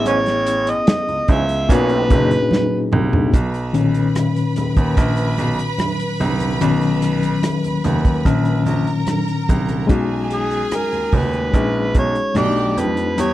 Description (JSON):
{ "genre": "lush 1970s-style soul", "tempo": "73 BPM", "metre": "4/4", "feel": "straight", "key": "B major", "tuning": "A4 = 436 Hz", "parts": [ { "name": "overdriven harmonica", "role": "melody", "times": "0.0-2.9, 10.3-13.3 s", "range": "G#4 to E5", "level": "-20 LUFS", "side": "right 1 dB", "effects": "none" }, { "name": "reed electric piano", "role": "accompaniment", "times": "0.0-13.3 s", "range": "A#2 to G#4", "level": "-20 LUFS", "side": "left 4 dB", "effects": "fast tremolo" }, { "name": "clear baby grand piano", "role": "bass", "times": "0.0-13.3 s", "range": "F#1 to E#2", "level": "-22 LUFS", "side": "right 1 dB", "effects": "none" }, { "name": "clear trombone section", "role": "stabs", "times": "0.1-2.2 s", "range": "G#2 to C#4", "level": "-23 LUFS", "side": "right 6 dB", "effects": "none" }, { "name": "warm soul drum kit", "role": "drums", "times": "0.1-13.3 s", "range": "hi-hat, kick drum, rim click, snare drum, toms", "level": "-17 LUFS", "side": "right 1 dB", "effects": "none" }, { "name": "congas", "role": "percussion", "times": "0.1-13.3 s", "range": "none", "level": "-26 LUFS", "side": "right 4 dB", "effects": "none" }, { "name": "bright symphonic violin section", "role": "second line", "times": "3.3-13.3 s", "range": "G4 to B5", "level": "-27 LUFS", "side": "right 2 dB", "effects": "none" } ], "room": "little or no reverb", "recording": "dry, close 1970s-style studio recording", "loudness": "-16 LUFS", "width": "side -14 dB against mid", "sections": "0.0-3.3 A section; 3.3-9.9 B section; 9.9-13.3 C section", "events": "band accent 0.1-3.3; drum fill 2.5-3.3; reed electric piano solo 3.3-9.9", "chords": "0.0 Amaj9; 1.7 Bmaj9; 9.9 B69; 12.4 B7alt" }